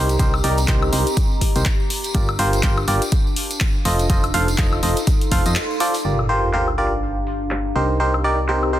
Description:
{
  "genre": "piano house",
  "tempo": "123 BPM",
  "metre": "4/4",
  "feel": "swing 58% on 16ths",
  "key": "G minor",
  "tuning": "A4 = 440 Hz",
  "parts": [
    { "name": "barking FM electric piano", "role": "riff", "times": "0.0-8.8 s", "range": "Eb4 to F5", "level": "-22 LUFS", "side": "right 1 dB", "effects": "chorus, sidechain pumping, dub echo" },
    { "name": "solid FM bass", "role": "bass", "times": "0.0-8.8 s", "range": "F1 to F2", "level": "-22 LUFS", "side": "equal", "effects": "sidechain pumping" },
    { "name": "warbly tape-like pad", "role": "texture", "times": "0.0-8.8 s", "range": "C4 to C6", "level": "-27 LUFS", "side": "equal", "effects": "chorus, built-in reverb, sidechain pumping" },
    { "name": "punchy analog drum machine", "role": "drums", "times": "0.1-8.8 s", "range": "handclaps, hi-hat, woodblock", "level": "-25 LUFS", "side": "left 2 dB", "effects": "overdrive, low-pass filter on hats, low-pass filter on snare, low-pass filter on perc" },
    { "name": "tambourine", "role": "percussion", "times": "0.1-6.0 s", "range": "none", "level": "-33 LUFS", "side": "right 2 dB", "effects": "none" },
    { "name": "electronic kick drum", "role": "drums", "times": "0.2-5.4 s", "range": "none", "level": "-20 LUFS", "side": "equal", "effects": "none" },
    { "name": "sub drop", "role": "sound effects", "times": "6.0-8.0 s", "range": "none", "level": "-28 LUFS", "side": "equal", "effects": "none" }
  ],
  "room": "light reverb",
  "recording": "dense, heavily limited modern master",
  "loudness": "-17 LUFS",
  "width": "side -13 dB against mid",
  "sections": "0.0-6.0 A section; 6.0-8.8 B section",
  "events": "break 5.6-6.0; band accent 5.6; impact 6.0-8.0",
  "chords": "0.0 Cm7; 1.9 Gm7; 3.9 F7; 6.0 Gm7; 7.8 Cm7"
}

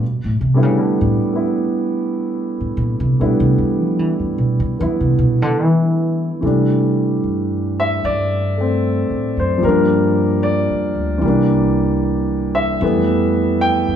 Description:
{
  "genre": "jazz ballad",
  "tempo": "75 BPM",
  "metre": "4/4",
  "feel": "swing 67% on 8ths",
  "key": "C major",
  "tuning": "A4 = 439 Hz",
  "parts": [
    { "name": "warm concert grand piano", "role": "accompaniment", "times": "0.0-14.0 s", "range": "E3 to G5", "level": "-17 LUFS", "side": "equal", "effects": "none" },
    { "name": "upright bass", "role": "bass", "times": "0.0-14.0 s", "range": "C2 to F3", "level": "-19 LUFS", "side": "equal", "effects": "none" }
  ],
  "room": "wet large studio reverb, RT60 1.2 s",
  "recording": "band playing live in one room",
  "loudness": "-15 LUFS",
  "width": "side -8 dB against mid",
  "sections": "0.0-6.4 A section; 6.4-14.0 B section",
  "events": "upright bass solo 0.0-6.4",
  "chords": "0.0 Cmaj13 (rootless); 6.4 C69; 9.6 Gm7; 11.2 C7; 12.8 Fmaj9#11"
}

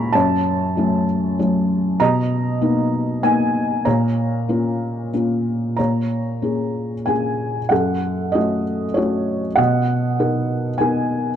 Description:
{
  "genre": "classical, lyrical solo piano",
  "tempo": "96 BPM",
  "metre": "3/4",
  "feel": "rubato",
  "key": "Bb phrygian",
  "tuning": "A4 = 440 Hz",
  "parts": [
    { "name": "felt-muted upright piano", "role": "solo", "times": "0.0-11.4 s", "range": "Gb2 to Db6", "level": "-17 LUFS", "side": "equal", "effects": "none" }
  ],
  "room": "light reverb",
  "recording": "dark, warm production",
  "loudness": "-17 LUFS",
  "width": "side -9 dB against mid",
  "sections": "0.0-5.8 A section; 5.8-11.4 A section",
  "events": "none",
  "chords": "0.1 Gbm; 2.0 Bmaj7; 3.9 Bbm; 5.8 Bbm7; 7.7 Gbm; 9.6 Bmaj7"
}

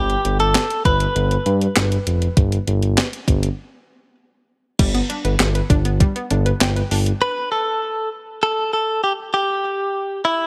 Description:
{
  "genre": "synth-pop",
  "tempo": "99 BPM",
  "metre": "4/4",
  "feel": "straight",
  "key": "unclear",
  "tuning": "A4 = 441 Hz",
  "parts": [
    { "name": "direct-recorded clean electric guitar", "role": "melody", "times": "0.0-10.5 s", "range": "E4 to B4", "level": "-22 LUFS", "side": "equal", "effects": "digital delay" },
    { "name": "smooth synth bass", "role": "bass", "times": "0.0-7.1 s", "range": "F1 to G2", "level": "-21 LUFS", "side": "equal", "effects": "none" },
    { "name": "clean 12-bit digital drum machine", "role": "drums", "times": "0.1-7.2 s", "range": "crash cymbal, handclaps, hi-hat, kick drum, snare drum", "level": "-21 LUFS", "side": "equal", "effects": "none" },
    { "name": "analog pluck", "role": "arpeggios", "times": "4.8-7.0 s", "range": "G3 to G5", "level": "-28 LUFS", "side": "equal", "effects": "chorus, digital delay" }
  ],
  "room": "light reverb",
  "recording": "none",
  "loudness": "-19 LUFS",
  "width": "mono",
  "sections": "0.0-4.8 A section; 4.8-7.2 B section; 7.2-10.5 C section",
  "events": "break 3.6-4.8",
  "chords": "0.0 G; 7.2 N.C."
}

